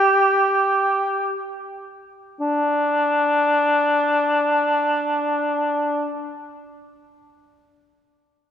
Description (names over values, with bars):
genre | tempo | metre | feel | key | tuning
classical, free, expressive piece for unaccompanied cor anglais | free time | none | none | unclear | A4 = 439 Hz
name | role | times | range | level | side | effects
dark cor anglais | solo | 0.0-6.1 s | D4 to G4 | -18 LUFS | equal | none
room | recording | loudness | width
wet church reverb, RT60 2.9 s | none | -18 LUFS | side -8 dB against mid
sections
0.0-2.4 A section; 2.4-8.5 B section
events
slowing down 0.0-2.4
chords
none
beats
free time